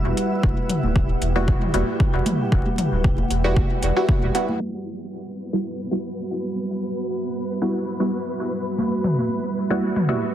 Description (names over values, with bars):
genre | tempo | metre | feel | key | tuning
dub techno | 115 BPM | 4/4 | swing 53% on 16ths | E minor | A4 = 440 Hz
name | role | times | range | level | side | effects
deep dark ambient pad | sustained chords | 0.0-10.3 s | G3 to F#5 | -28 LUFS | right 2 dB | chorus, built-in reverb, sidechain pumping
flickering grainy texture | texture | 0.0-10.3 s | B3 to E5 | -32 LUFS | equal | built-in reverb, sidechain pumping
warm sub bass | bass | 0.1-4.3 s | D1 to E1 | -24 LUFS | equal | sidechain pumping
electronic hi-hat | drums | 0.2-4.5 s | none | -31 LUFS | equal | none
electronic kick drum | drums | 0.4-4.2 s | none | -20 LUFS | equal | overdrive
electronic congas and toms | percussion | 0.4-4.6, 8.8-10.2 s | none | -26 LUFS | equal | overdrive, sidechain pumping on perc, sidechain pumping on toms, dub echo
filtered dub chord stab | stabs | 1.4-10.2 s | G3 to F#4 | -26 LUFS | equal | chorus, phaser, sidechain pumping, dub echo
room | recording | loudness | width
light reverb | dense, heavily limited modern master, vinyl crackle, low-pass filter | -20 LUFS | side -11 dB against mid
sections
0.0-4.6 A section; 4.6-10.3 B section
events
filter sweep on synth stab 0.0-4.6; filter sweep 4.6-10.3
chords
0.0 Emadd9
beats
| 0.43 0.96 1.48 2.00 | 2.52 3.04 3.56 4.09 | 4.61 5.13 5.65 6.17 | 6.70 7.22 7.74 8.26 | 8.78 9.30 9.83